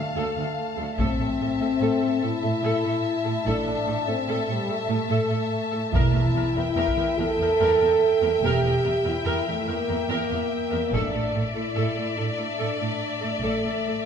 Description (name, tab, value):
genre	cinematic, epic orchestral film score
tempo	96 BPM (dotted quarters)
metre	12/8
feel	straight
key	unclear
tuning	A4 = 443 Hz
part	warm symphonic violin section	melody	0.0-14.1 s	E5 to A5	-34 LUFS	left 5 dB	none
part	warm symphonic violin section	second line	0.0-14.1 s	D5 to F5	-32 LUFS	left 5 dB	none
part	rich symphonic viola section	accompaniment	0.0-13.9 s	A4 to Bb4	-32 LUFS	right 1 dB	none
part	clear French horn section	sustained chords	0.0-14.1 s	G3 to A4	-25 LUFS	equal	none
part	rich symphonic cello section	bass	0.0-13.9 s	D2 to A2	-29 LUFS	right 3 dB	none
part	clear symphonic double bass section	bass	1.0-13.6 s	E1 to A1	-28 LUFS	right 3 dB	none
part	taiko ensemble	drums	1.0-1.8, 5.9-7.1, 10.9-11.7 s	none	-29 LUFS	equal	none
room	wet recital hall reverb, RT60 1.6 s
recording	recorded in a church or concert hall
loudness	-22 LUFS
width	side -7 dB against mid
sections	0.0-14.1 A section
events	none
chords	0.0 Dm; 1.0 Am; 5.9 Edim; 10.9 Asus4